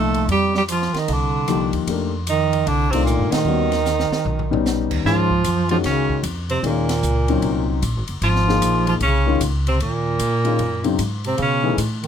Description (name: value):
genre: modal jazz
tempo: 151 BPM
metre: 4/4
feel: swing 64% on 8ths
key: unclear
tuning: A4 = 439 Hz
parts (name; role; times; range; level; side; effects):
- warm tenor saxophone; melody; 0.0-11.8 s; A#3 to A4; -22 LUFS; right 1 dB; none
- breathy bass clarinet; second line; 0.0-12.1 s; Bb2 to A3; -23 LUFS; right 5 dB; none
- warm grand piano; accompaniment; 0.0-11.8 s; Bb2 to Bb4; -22 LUFS; left 8 dB; none
- upright bass; bass; 0.0-12.1 s; F#1 to B2; -23 LUFS; equal; none
- open jazz drum kit; drums; 0.1-12.1 s; crash cymbal, hi-hat, kick drum, ride cymbal, rim click, snare drum, toms; -29 LUFS; left 1 dB; none
room: light reverb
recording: close, detailed microphones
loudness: -17 LUFS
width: side -8 dB against mid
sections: 0.0-5.0 A section; 5.0-12.1 B section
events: band accent 3.3; drum fill 3.9-4.7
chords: 0.0 F13sus4; 3.5 Eb7alt; 5.0 G#13sus4; 11.4 B13sus4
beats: | 0.29 0.69 1.08 1.48 | 1.88 2.27 2.67 3.07 | 3.46 3.86 4.25 4.65 | 5.05 5.44 5.84 6.24 | 6.63 7.03 7.42 7.82 | 8.22 8.61 9.01 9.41 | 9.80 10.20 10.60 10.99 | 11.39 11.78